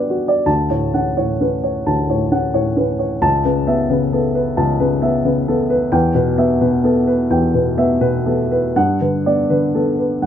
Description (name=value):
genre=neoclassical minimalist piano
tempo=87 BPM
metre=4/4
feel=uneven beats, rubato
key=D major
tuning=A4 = 440 Hz
part: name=dark upright piano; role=solo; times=0.0-10.3 s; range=C#2 to A5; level=-14 LUFS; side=equal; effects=none
room=light reverb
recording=close, detailed microphones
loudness=-14 LUFS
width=side -9 dB against mid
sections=0.5-10.3 A section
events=none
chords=0.5 Dmaj7; 3.2 Aadd9/C#; 5.9 Em; 8.8 Gmaj7